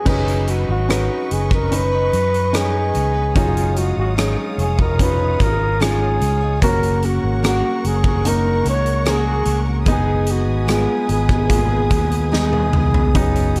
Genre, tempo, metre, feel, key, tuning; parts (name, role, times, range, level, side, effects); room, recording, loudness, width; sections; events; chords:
pop ballad; 73 BPM; 4/4; straight; A4 = 440 Hz
breathy flugelhorn; melody; 0.0-13.6 s; F#4 to C#5; -24 LUFS; equal
felt-muted upright piano; accompaniment; 0.0-13.6 s; C#3 to B4; -26 LUFS; equal
warm studio string section; sustained chords; 0.0-13.6 s; A#4 to D#6; -34 LUFS; equal
picked steel-string acoustic guitar; arpeggios; 0.0-13.6 s; F#3 to C#5; -32 LUFS; equal
fingered electric bass; bass; 0.1-13.6 s; E#1 to F#2; -22 LUFS; equal
huge arena drum kit; drums; 0.1-13.6 s; crash cymbal, hi-hat, kick drum, rim click, snare drum, toms; -23 LUFS; equal
small room ambience; dark, warm production; -18 LUFS; mono
0.1-13.6 A section
drum fill 12.3-13.2
0.1 Badd9/F#; 3.4 C#add9; 6.6 F#; 9.9 G#m/F#